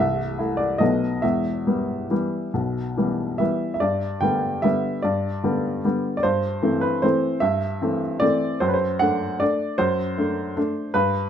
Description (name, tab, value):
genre	classical, piano waltz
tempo	136-162 BPM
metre	3/4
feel	rubato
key	E minor, G major from 3.8 s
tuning	A4 = 441 Hz
part	warm upright piano	solo	0.0-11.3 s	C1 to G5	-20 LUFS	equal	none
room	light reverb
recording	none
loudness	-20 LUFS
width	side -8 dB against mid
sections	0.0-3.8 A section; 3.8-11.3 B section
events	none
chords	0.0 Am/C; 0.8 B7; 1.2 Em; 3.8 G; 6.2 Am7/G; 8.6 D7/F#